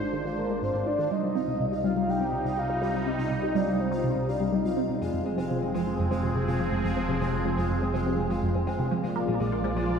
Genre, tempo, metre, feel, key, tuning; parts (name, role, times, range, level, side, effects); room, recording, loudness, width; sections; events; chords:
ambient, sequencer-driven space music; 123 BPM; 4/4; straight; A4 = 440 Hz
sweeping resonant pad; sustained chords; 0.0-10.0 s; C3 to D5; -30 LUFS; right 1 dB; chorus
resonant blip pluck; riff; 0.0-9.9 s; F2 to G4; -29 LUFS; equal; phaser, wide subtle chorus, tape echo
fat analog bass; bass; 0.0-10.0 s; F1 to C2; -36 LUFS; equal
pulsing gated texture; texture; 0.0-10.0 s; F4 to F5; -36 LUFS; left 1 dB; chorus, built-in reverb
soft octave-layered synth lead; melody; 0.4-5.0 s; Bb4 to G5; -31 LUFS; left 1 dB; chorus, tremolo, tape echo
concert harp; arpeggios; 5.0-10.0 s; Ab3; -32 LUFS; right 1 dB; auto-pan, tape echo
wet echo chamber reverb, RT60 2.1 s; echo-heavy mix; -25 LUFS; side -6 dB against mid
0.0-10.0 A section
fade-in on analog synth bass 0.0-10.0; filter sweep on synth arpeggio sound 0.0-10.0
0.0 Ab; 1.1 Cm; 5.0 Fm; 8.9 Bb